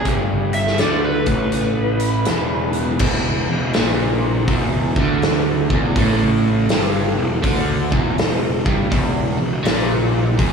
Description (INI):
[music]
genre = blues rock power trio and southern rock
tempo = 81 BPM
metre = 4/4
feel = swing 65% on 8ths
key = unclear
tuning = A4 = 440 Hz
[part]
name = overdriven slide guitar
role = melody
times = 0.0-3.0 s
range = B4 to E5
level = -24 LUFS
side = left 1 dB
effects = slapback echo, analog delay
[part]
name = crunchy overdriven guitar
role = riff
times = 0.0-10.5 s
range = E2 to D3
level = -20 LUFS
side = right 1 dB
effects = none
[part]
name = fuzz picked electric bass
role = bass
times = 0.0-10.5 s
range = E1 to D2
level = -22 LUFS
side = equal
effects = overdrive
[part]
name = big rock drum kit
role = drums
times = 0.1-10.5 s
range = crash cymbal, hi-hat, kick drum, snare drum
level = -20 LUFS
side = equal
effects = none
[sound]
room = moderate concert hall reverb, RT60 2.2 s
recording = big arena sound, studio ambience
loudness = -16 LUFS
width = side -6 dB against mid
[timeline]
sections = 0.0-3.0 A section; 3.0-10.5 B section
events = none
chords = 0.0 E5